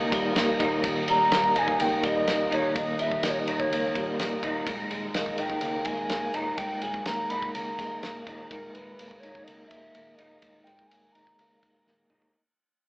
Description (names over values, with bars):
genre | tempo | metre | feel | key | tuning
psychedelic rock | 125 BPM | 4/4 | straight | unclear | A4 = 438 Hz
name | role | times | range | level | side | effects
combo organ | sustained chords | 0.0-12.3 s | Eb3 to Bb5 | -37 LUFS | right 1 dB | none
electric guitar through a small old amp | riff | 0.0-12.4 s | Eb2 to Eb4 | -29 LUFS | equal | rotary speaker
fingered electric bass | bass | 0.0-12.3 s | Eb1 to Db2 | -44 LUFS | equal | none
damped 70s drum kit | drums | 0.1-12.3 s | kick drum, ride cymbal, snare drum, toms | -32 LUFS | equal | none
breathy mellow concert flute | melody | 1.1-11.9 s | Bb4 to Cb6 | -28 LUFS | equal | none
room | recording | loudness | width
moderate large studio reverb, RT60 1.1 s | band playing live in one room, AM radio sound | -24 LUFS | side -32 dB against mid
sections
0.0-12.3 A section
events
fade-out 0.1-12.3; drum fill 11.9-12.3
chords
0.0 Eb; 4.7 Absus2/Eb